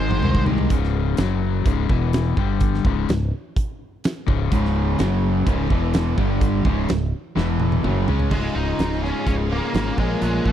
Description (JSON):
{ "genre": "classic rock", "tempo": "126 BPM", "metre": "4/4", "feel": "straight", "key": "unclear", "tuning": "A4 = 440 Hz", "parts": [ { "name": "octave-fuzz lead guitar", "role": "melody", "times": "0.0-0.4, 8.3-10.5 s", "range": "Ab3 to C5", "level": "-28 LUFS", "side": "equal", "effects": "wah, distortion" }, { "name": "cranked stack guitar", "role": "riff", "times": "0.0-0.7, 4.5-10.5 s", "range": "Db2 to Bb4", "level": "-26 LUFS", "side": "right 12 dB", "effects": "overdrive" }, { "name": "overdriven electric guitar", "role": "riff", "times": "0.0-10.5 s", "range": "Db2 to Bb4", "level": "-24 LUFS", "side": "left 11 dB", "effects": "none" }, { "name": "growling fingered electric bass", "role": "bass", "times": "0.0-10.5 s", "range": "Db1 to Db2", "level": "-23 LUFS", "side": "right 1 dB", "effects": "overdrive" }, { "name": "big rock drum kit", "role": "drums", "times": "0.1-10.5 s", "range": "crash cymbal, hi-hat, kick drum, snare drum, toms", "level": "-24 LUFS", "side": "right 1 dB", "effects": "none" }, { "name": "biting overdriven guitar", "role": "riff", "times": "8.3-10.5 s", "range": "Db2 to Bb3", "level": "-29 LUFS", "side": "equal", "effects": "none" } ], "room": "studio reverb", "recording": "dry, close 1970s-style studio recording", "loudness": "-19 LUFS", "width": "side -10 dB against mid", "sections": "0.7-8.3 A section; 8.3-10.5 B section", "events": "drum fill 0.0-0.7, 7.4-8.3", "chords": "0.0 Ab; 0.7 Db5; 1.2 Gb5; 1.7 Db5; 1.9 E5; 2.4 G5; 2.9 Db5; 5.0 Gb5; 5.5 Db5; 5.7 E5; 6.2 G5; 6.7 Db5; 7.4 E5; 7.8 Db5; 8.3 Db; 10.0 Bbm", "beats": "0.23 | 0.71 1.19 1.66 2.14 | 2.61 3.09 3.56 4.04 | 4.52 4.99 5.47 5.94 | 6.42 6.89 7.37 7.84 | 8.32 8.79 9.27 9.74 | 10.22" }